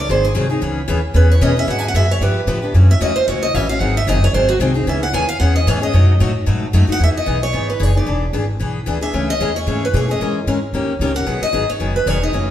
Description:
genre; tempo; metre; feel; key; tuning
acoustic string swing (jazz manouche); 226 BPM; 4/4; swing 56% on 8ths; unclear; A4 = 440 Hz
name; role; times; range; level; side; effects
picked steel-string acoustic guitar; melody; 0.0-12.5 s; F#4 to G#5; -20 LUFS; right 1 dB; none
upright bass; bass; 0.0-12.5 s; E1 to B2; -17 LUFS; equal; none
picked steel-string acoustic guitar; accompaniment; 0.1-12.5 s; B2 to A#4; -20 LUFS; left 2 dB; none
room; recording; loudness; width
wet stone room reverb, RT60 1.2 s; band playing live in one room; -14 LUFS; side -11 dB against mid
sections
0.0-7.0 A section; 7.0-12.5 B section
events
steel-string acoustic guitar solo 0.0-7.0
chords
0.1 G#7; 0.6 C#m7; 1.7 G#m7b5; 2.2 G9; 2.8 F#m7; 3.8 G#7; 4.9 C#m7; 5.9 B7; 7.0 Emaj9; 8.1 E7; 9.1 Amaj9; 10.2 A#m7b5; 10.7 D#7; 11.3 G#m7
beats
0.09 0.36 | 0.62 0.89 1.16 1.42 | 1.69 1.95 2.22 2.48 | 2.75 3.02 3.28 3.55 | 3.81 4.08 4.34 4.61 | 4.88 5.14 5.41 5.67 | 5.94 6.20 6.47 6.74 | 7.00 7.27 7.54 7.80 | 8.07 8.34 8.60 8.87 | 9.13 9.40 9.67 9.94 | 10.20 10.47 10.73 11.00 | 11.27 11.53 11.80 12.07 | 12.34

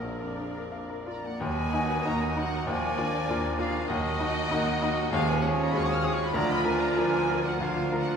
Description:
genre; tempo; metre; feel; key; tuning
classical, romantic movement for piano and orchestra; 85-101 BPM; 4/4; rubato; Eb minor; A4 = 440 Hz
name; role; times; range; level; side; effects
clear baby grand piano; melody; 0.0-8.2 s; Bb1 to F5; -30 LUFS; left 1 dB; none
warm studio violin section; melody; 0.0-8.2 s; Eb5 to F6; -36 LUFS; left 3 dB; none
bright silver concert flute; second line; 0.0-8.2 s; D5 to F6; -36 LUFS; equal; none
clear clarinet; second line; 0.0-8.2 s; F4 to D5; -36 LUFS; right 2 dB; none
rich studio violin section; second line; 0.0-8.2 s; Gb4 to Ab5; -38 LUFS; left 4 dB; none
warm oboe; second line; 0.0-8.2 s; Bb4 to Eb5; -36 LUFS; equal; none
rich studio viola section; accompaniment; 0.0-8.2 s; Bb3 to D5; -37 LUFS; right 2 dB; none
warm bassoon; accompaniment; 0.0-8.2 s; F3 to Gb3; -38 LUFS; left 1 dB; none
dark French horn section; sustained chords; 0.0-7.8 s; F3 to F4; -41 LUFS; left 1 dB; none
clear studio cello section; bass; 0.0-8.2 s; D2 to Bb2; -36 LUFS; right 3 dB; none
rich studio double bass section; bass; 0.0-8.2 s; Bb1 to Eb2; -35 LUFS; right 3 dB; none
room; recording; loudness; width
wet scoring stage reverb, RT60 1.4 s; recorded in a church or concert hall; -25 LUFS; side -6 dB against mid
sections
0.0-1.4 A section; 1.4-8.2 B section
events
none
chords
0.0 Bb; 1.4 Ebm; 2.7 Bb7/Eb; 3.9 Ebm; 5.1 Db/Eb; 6.3 Bb/D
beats
0.03 0.73 | 1.41 2.05 2.68 3.29 | 3.89 4.50 5.12 5.73 | 6.34 6.96 7.59

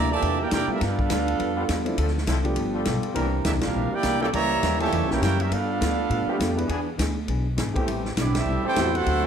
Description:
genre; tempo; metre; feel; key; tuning
jazz, big band swing; 204 BPM; 4/4; swing 60% on 8ths; G major; A4 = 440 Hz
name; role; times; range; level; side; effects
clear trumpet section; melody; 0.0-9.2 s; B3 to A#5; -27 LUFS; right 3 dB; tape echo
warm trombone section; second line; 0.0-9.3 s; A#2 to G4; -28 LUFS; right 4 dB; none
hollow-body jazz guitar; accompaniment; 0.0-9.3 s; A2 to A4; -32 LUFS; left 6 dB; none
upright bass; bass; 0.0-9.3 s; G1 to A2; -27 LUFS; equal; none
vintage drum kit; drums; 0.2-9.1 s; hi-hat, kick drum, ride cymbal, snare drum; -30 LUFS; equal; none
warm concert grand piano; accompaniment; 0.7-9.1 s; E3 to B4; -30 LUFS; equal; none
clear trombone section; sustained chords; 1.6-9.0 s; E3 to Bb4; -32 LUFS; left 1 dB; none
room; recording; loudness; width
wet plate reverb, RT60 1.0 s, small room ambience; dreamy mix soaked in reverb; -22 LUFS; side -8 dB against mid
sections
0.0-9.3 A section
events
band accent 3.6, 8.3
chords
0.0 C9; 0.8 G9; 2.0 Dm7; 2.6 G9; 3.1 C9; 4.3 C#dim7; 5.5 G9; 6.7 E7; 7.9 Am7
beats
0.21 0.51 | 0.80 1.09 1.39 1.68 | 1.97 2.27 2.56 2.85 | 3.15 3.44 3.74 4.03 | 4.33 4.62 4.92 5.21 | 5.50 5.80 6.09 6.39 | 6.69 6.98 7.28 7.57 | 7.87 8.16 8.46 8.76 | 9.05

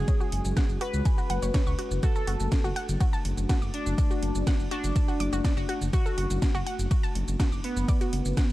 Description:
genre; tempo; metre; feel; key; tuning
melodic techno; 123 BPM; 4/4; straight; unclear; A4 = 440 Hz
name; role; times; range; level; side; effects
resonant sweep polysynth; melody; 0.0-8.5 s; B3 to B4; -34 LUFS; left 1 dB; chorus, sidechain pumping, tape echo
dark analog pad; sustained chords; 0.0-8.5 s; G#3 to F#4; -39 LUFS; equal; chorus, sidechain pumping
swelling detuned saw bass; bass; 0.0-8.5 s; F#1 to C#2; -29 LUFS; equal; sidechain pumping
wide unison pluck; arpeggios; 0.1-8.4 s; F#4 to A6; -36 LUFS; right 1 dB; sidechain pumping, tape echo
electronic kick drum; drums; 0.1-8.5 s; none; -25 LUFS; equal; overdrive
techno drum kit; drums; 0.1-8.5 s; hi-hat, ride cymbal, shaker, snare drum; -37 LUFS; right 1 dB; overdrive
room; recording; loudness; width
little or no reverb; dark, warm production; -24 LUFS; side -16 dB against mid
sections
0.0-8.5 A section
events
none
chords
0.0 F#sus2; 2.0 D/F#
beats
| 0.08 0.57 1.05 1.54 | 2.03 2.52 3.01 3.49 | 3.98 4.47 4.96 5.45 | 5.93 6.42 6.91 7.40 | 7.88 8.37

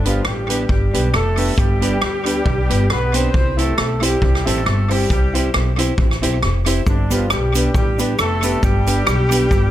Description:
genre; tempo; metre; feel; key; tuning
ska; 136 BPM; 4/4; swing 55% on 8ths; G mixolydian; A4 = 440 Hz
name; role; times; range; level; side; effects
mellow horn section; melody; 0.0-9.7 s; D3 to C5; -22 LUFS; equal; tape echo
warm upright piano; stabs; 0.0-9.6 s; D4 to C5; -26 LUFS; left 4 dB; tape echo
upright bass; bass; 0.0-9.7 s; F1 to D2; -19 LUFS; equal; none
mellow electric guitar; accompaniment; 0.1-9.5 s; B3 to G4; -25 LUFS; right 5 dB; tape echo
swinging big-band drum kit; drums; 0.1-9.6 s; hi-hat, kick drum, rim click; -20 LUFS; equal; tape echo
cabasa; percussion; 6.9-9.6 s; none; -34 LUFS; left 4 dB; none
room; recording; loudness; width
little or no reverb; none; -15 LUFS; side -12 dB against mid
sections
0.0-9.7 A section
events
none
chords
0.0 G; 3.3 C; 6.9 G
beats
0.26 0.70 1.14 | 1.58 2.02 2.46 2.90 | 3.34 3.78 4.22 4.66 | 5.11 5.55 5.99 6.43 | 6.87 7.31 7.75 8.19 | 8.63 9.07 9.51

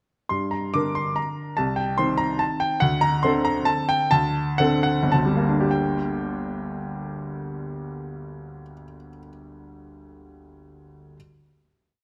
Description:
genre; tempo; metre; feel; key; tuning
classical, piano waltz; 98-153 BPM; 3/4; rubato; G minor; A4 = 442 Hz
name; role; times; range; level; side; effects
clear upright piano; solo; 0.3-11.2 s; G1 to D6; -24 LUFS; equal; none
room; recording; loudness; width
moderate scoring stage reverb, RT60 1.6 s; close, detailed microphones; -23 LUFS; mono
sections
0.3-5.7 A section; 5.7-9.0 final chord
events
slowing down 2.2-5.7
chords
0.3 Gm; 1.6 Cm; 2.8 D5; 5.7 Gm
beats
| 0.31 0.74 1.18 | 1.58 1.99 2.40 | 2.81 3.23 3.67 | 4.12 4.58 5.13 | 5.71 6.26 6.83 | 7.36 7.91 8.47

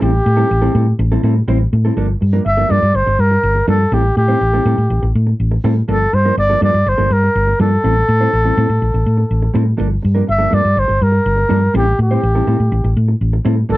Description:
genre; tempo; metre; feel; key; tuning
disco; 123 BPM; 4/4; straight; unclear; A4 = 443 Hz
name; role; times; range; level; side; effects
breathy flugelhorn; melody; 0.0-13.8 s; G4 to E5; -16 LUFS; equal; none
mellow electric guitar; accompaniment; 0.0-13.8 s; F3 to C5; -21 LUFS; right 1 dB; none
hollow-body short-scale fingered electric bass; bass; 0.0-13.8 s; G1 to A2; -14 LUFS; equal; none
room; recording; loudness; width
little or no reverb; dry, close 1970s-style studio recording; -12 LUFS; side -17 dB against mid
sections
0.0-2.0 A section; 2.0-13.8 B section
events
none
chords
0.0 Am7; 2.0 Gm9; 3.9 Am7; 5.9 Gm9; 7.8 Am7; 9.8 Gm9; 11.7 Am7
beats
| 0.01 0.50 0.99 1.48 | 1.97 2.46 2.94 3.43 | 3.92 4.41 4.90 5.39 | 5.88 6.37 6.86 7.35 | 7.84 8.32 8.81 9.30 | 9.79 10.28 10.77 11.26 | 11.74 12.23 12.72 13.21 | 13.70

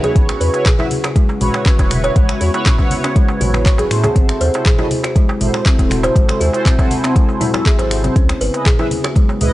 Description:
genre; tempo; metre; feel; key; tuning
afro house; 120 BPM; 4/4; straight; unclear; A4 = 439 Hz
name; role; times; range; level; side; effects
warm analog pad; sustained chords; 0.0-9.5 s; B#2 to G#5; -27 LUFS; left 1 dB; chorus, sidechain pumping
kalimba; arpeggios; 0.0-9.5 s; G#3 to C#5; -20 LUFS; equal; sidechain pumping, analog delay
mellow synth brass; stabs; 0.0-9.5 s; E4 to E5; -22 LUFS; right 1 dB; chorus, phaser, sidechain pumping, analog delay
afro-pop drum kit; drums; 0.0-9.5 s; cabasa, finger snaps, handclaps, hi-hat, toms; -22 LUFS; equal; none
congas; percussion; 0.0-9.3 s; none; -27 LUFS; left 1 dB; none
darbuka; percussion; 0.0-9.4 s; none; -27 LUFS; right 2 dB; none
warm sub bass; bass; 0.2-9.5 s; D#1 to A2; -19 LUFS; equal; sidechain pumping
electronic kick drum; drums; 0.2-9.3 s; none; -13 LUFS; equal; none
room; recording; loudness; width
digital ambience; dry, gritty hardware recording, nothing above 10.7 kHz; -12 LUFS; side -16 dB against mid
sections
0.0-9.5 A section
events
none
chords
0.2 A6; 4.2 G#7b9b13; 8.2 C#m7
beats
| 0.16 0.66 1.16 1.66 | 2.16 2.66 3.16 3.66 | 4.16 4.66 5.16 5.66 | 6.16 6.66 7.16 7.66 | 8.16 8.66 9.16

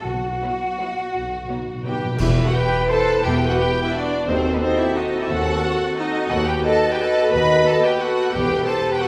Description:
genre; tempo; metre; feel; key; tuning
classical, orchestral ballroom waltz; 157-191 BPM; 3/4; rubato; E minor; A4 = 440 Hz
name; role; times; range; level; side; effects
clear studio violin section; second line; 0.0-9.1 s; B3 to B4; -31 LUFS; equal; none
concert flute; second line; 0.0-9.1 s; D#4 to F#5; -26 LUFS; equal; none
rich studio cello section; bass; 0.0-8.6 s; D#2 to F#4; -32 LUFS; equal; none
timpani; percussion; 0.0-2.1, 8.3-8.8 s; E2 to B2; -32 LUFS; equal; none
rich studio double bass section; bass; 0.1-8.6 s; E1 to D#2; -30 LUFS; equal; none
rich studio violin section; melody; 0.4-9.1 s; D#4 to B5; -30 LUFS; equal; none
rich studio viola section; accompaniment; 0.4-9.1 s; F#3 to B4; -27 LUFS; equal; none
warm French horn section; sustained chords; 0.4-9.1 s; B3 to G4; -30 LUFS; equal; none
bright trumpet section; stabs; 2.2-9.1 s; A4 to B4; -30 LUFS; equal; none
clash cymbals and concert bass drum; percussion; 2.2-2.9 s; none; -32 LUFS; equal; none
room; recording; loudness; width
wet recital hall reverb, RT60 1.4 s; recorded in a church or concert hall; -20 LUFS; mono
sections
0.0-2.2 A section; 2.2-9.1 B section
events
timpani fill 1.1-2.2; band accent 2.2-2.5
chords
0.1 Bsus4; 1.1 B; 2.2 Em; 4.3 D#dim7; 6.3 B7/D#; 8.3 Em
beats
| 0.06 0.42 0.79 | 1.14 1.49 1.85 | 2.19 2.54 2.89 | 3.23 3.58 3.94 | 4.27 4.61 4.96 | 5.29 5.63 5.98 | 6.30 6.64 7.00 | 7.33 7.67 8.01 | 8.34 8.67 9.01

